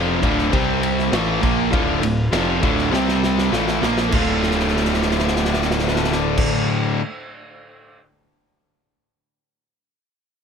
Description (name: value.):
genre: classic rock.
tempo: 100 BPM.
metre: 4/4.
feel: straight.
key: D minor.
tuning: A4 = 440 Hz.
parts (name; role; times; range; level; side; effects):
dark upright piano; accompaniment; 0.0-6.5 s; C4 to G5; -30 LUFS; left 3 dB; none.
crunchy overdriven guitar; riff; 0.0-7.0 s; D2 to C4; -24 LUFS; equal; spring reverb.
distorted electric guitar; riff; 0.0-7.0 s; D2 to F4; -23 LUFS; right 10 dB; distortion.
tight distorted guitar; riff; 0.0-7.0 s; D2 to F4; -23 LUFS; left 12 dB; distortion.
fuzz picked electric bass; bass; 0.0-6.5 s; D1 to C2; -25 LUFS; equal; overdrive.
vintage drum kit; drums; 0.2-8.0 s; crash cymbal, kick drum, ride cymbal, snare drum; -24 LUFS; equal; none.
room: small room ambience.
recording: none.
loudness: -17 LUFS.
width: side -6 dB against mid.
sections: 0.0-4.1 A section; 4.1-6.5 B section.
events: drum fill 2.9-4.1, 4.4-6.4.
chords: 0.0 Dm; 0.5 C5; 1.1 Dm; 2.9 C5; 3.5 Dm.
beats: 0.53 1.13 | 1.73 2.33 2.93 3.53 | 4.13 4.73 5.33 5.92.